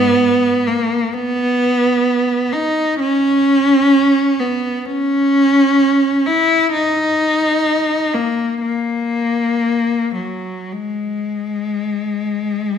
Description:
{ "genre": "classical, free, expressive piece for unaccompanied cello", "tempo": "free time", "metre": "none", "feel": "none", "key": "unclear", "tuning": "A4 = 440 Hz", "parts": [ { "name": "warm cello", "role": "solo", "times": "0.0-12.8 s", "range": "G#2 to E4", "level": "-14 LUFS", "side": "equal", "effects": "none" } ], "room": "moderate recital hall reverb, RT60 1.4 s", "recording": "minimal, uncompressed stereo recording", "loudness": "-14 LUFS", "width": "side -8 dB against mid", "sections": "0.0-12.8 A section", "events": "none", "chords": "none" }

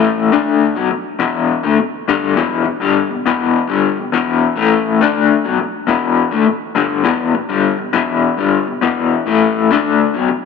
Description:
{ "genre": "rock", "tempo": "102 BPM", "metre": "4/4", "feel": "straight", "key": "unclear", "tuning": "A4 = 440 Hz", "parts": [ { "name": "electric guitar through a small old amp", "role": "solo", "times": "0.0-10.5 s", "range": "E2 to D4", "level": "-13 LUFS", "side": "left 6 dB", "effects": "tremolo" } ], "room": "moderate echo chamber reverb, RT60 2.4 s", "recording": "none", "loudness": "-13 LUFS", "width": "side -5 dB against mid", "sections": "0.0-10.5 A section", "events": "none", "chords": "0.0 E5" }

